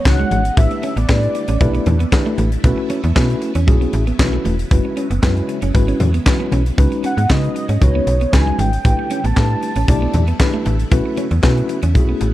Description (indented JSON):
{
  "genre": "early-eighties boogie funk",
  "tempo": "116 BPM",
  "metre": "4/4",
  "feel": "straight",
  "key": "unclear",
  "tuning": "A4 = 440 Hz",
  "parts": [
    { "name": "warm velvety synth lead", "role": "melody", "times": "0.0-2.4, 7.1-10.7 s", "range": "C#5 to A5", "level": "-23 LUFS", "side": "equal", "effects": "chorus" },
    { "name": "phased string machine", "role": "sustained chords", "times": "0.0-12.3 s", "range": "C#3 to E4", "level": "-31 LUFS", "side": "equal", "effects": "ensemble chorus, phaser" },
    { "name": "electric guitar at the edge of break-up", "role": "riff", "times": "0.0-12.2 s", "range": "G#3 to C#4", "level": "-27 LUFS", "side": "right 7 dB", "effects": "analog chorus" },
    { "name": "mellow tine electric piano", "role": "accompaniment", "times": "0.1-12.3 s", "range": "G#3 to D5", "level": "-22 LUFS", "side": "left 2 dB", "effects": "medium stereo tremolo" },
    { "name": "slap-like FM bass", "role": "bass", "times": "0.1-12.3 s", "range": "E1 to C#3", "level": "-17 LUFS", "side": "equal", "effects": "none" },
    { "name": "tight funk drum kit", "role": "drums", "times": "0.1-12.3 s", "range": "handclaps, hi-hat, kick drum, snare drum", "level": "-17 LUFS", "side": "equal", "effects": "none" },
    { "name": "congas", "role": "percussion", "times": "0.1-12.3 s", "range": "none", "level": "-25 LUFS", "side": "left 1 dB", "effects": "none" }
  ],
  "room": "studio reverb",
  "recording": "dark, warm production",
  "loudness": "-14 LUFS",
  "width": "side -15 dB against mid",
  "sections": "0.0-12.3 A section",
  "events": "none",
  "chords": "0.0 C#9sus4; 0.6 A9sus4; 2.6 B9sus4; 4.7 F#9sus4; 6.8 C#9sus4; 8.8 A9sus4; 10.9 B9sus4",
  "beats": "0.06 | 0.57 1.09 1.61 2.12 | 2.64 3.16 3.68 4.19 | 4.71 5.23 5.75 6.26 | 6.78 7.30 7.81 8.33 | 8.85 9.37 9.88 10.40 | 10.92 11.44 11.95"
}